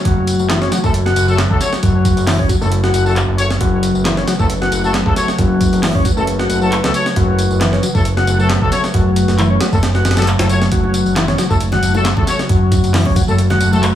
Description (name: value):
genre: breakbeat, breaks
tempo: 135 BPM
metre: 4/4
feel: swing 54% on 16ths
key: F# minor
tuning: A4 = 441 Hz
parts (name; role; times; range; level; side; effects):
- warbly tape-like pad; sustained chords; 0.0-13.9 s; C#3 to B4; -21 LUFS; equal; chorus, built-in reverb, sidechain pumping
- tonewheel organ; riff; 0.1-13.8 s; E3 to F#4; -19 LUFS; left 2 dB; slow rotary speaker, dub echo
- fat analog bass; bass; 0.1-13.9 s; F#1 to C#2; -17 LUFS; equal; none
- breakbeat sampler-style drum kit; drums; 0.1-13.9 s; hi-hat, kick drum, snare drum; -18 LUFS; equal; small room ambience
- electronic tambourine and handclaps; drums; 0.1-13.9 s; none; -25 LUFS; left 1 dB; small room ambience
- clear brass ensemble; stabs; 0.8-13.8 s; A3 to C#5; -22 LUFS; left 2 dB; dub echo
- bongos and congas; percussion; 10.8-13.8 s; none; -24 LUFS; left 2 dB; none
room: light reverb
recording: studio ambience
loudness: -12 LUFS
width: side -11 dB against mid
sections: 0.0-13.9 A section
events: none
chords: 0.0 F#m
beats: | 0.05 0.50 0.94 1.38 | 1.83 2.27 2.72 3.16 | 3.61 4.05 4.50 4.94 | 5.38 5.83 6.27 6.72 | 7.16 7.61 8.05 8.50 | 8.94 9.38 9.83 10.27 | 10.72 11.16 11.61 12.05 | 12.50 12.94 13.38 13.83